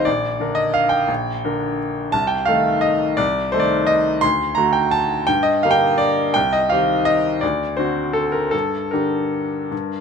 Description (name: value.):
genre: classical, piano waltz.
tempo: 148-184 BPM.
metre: 3/4.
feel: rubato.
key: G minor.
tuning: A4 = 440 Hz.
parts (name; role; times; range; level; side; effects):
bright baby grand piano; solo; 0.0-10.0 s; Bb1 to C6; -17 LUFS; equal; none.
room: light reverb.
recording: close, detailed microphones.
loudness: -17 LUFS.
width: side -6 dB against mid.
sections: 0.0-10.0 A section.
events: none.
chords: 0.1 Gm/Bb; 2.1 Adim/C; 4.2 D; 5.3 Gm; 6.4 Cm; 7.4 D7; 8.5 Gm.